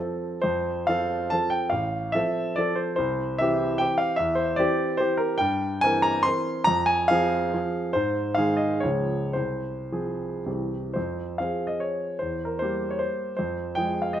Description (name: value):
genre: classical, romantic triple-time dance for piano with dotted rhythms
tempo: 104-162 BPM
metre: 3/4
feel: rubato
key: F major, F minor from 5.4 s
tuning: A4 = 439 Hz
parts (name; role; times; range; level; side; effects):
- warm grand piano; solo; 0.0-14.2 s; A1 to C6; -23 LUFS; equal; none
room: light reverb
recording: none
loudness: -23 LUFS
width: side -10 dB against mid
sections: 0.4-11.0 A section; 11.0-14.2 B section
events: none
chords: 0.4 F; 1.7 F/A; 3.0 C; 4.2 C/E; 5.4 C7/G; 6.7 Fm; 8.0 Ab; 8.8 Db; 9.4 Fm/C; 10.5 C; 11.0 Fm; 12.2 C7/E; 13.4 Fm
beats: | 0.43 0.89 1.32 | 1.73 2.16 2.59 | 2.99 3.40 3.81 | 4.19 4.58 5.00 | 5.39 5.82 6.25 | 6.67 7.11 7.54 | 7.95 8.37 8.84 | 9.36 9.92 10.47 | 10.97 11.40 11.81 | 12.20 12.61 13.00 | 13.38 13.77 14.16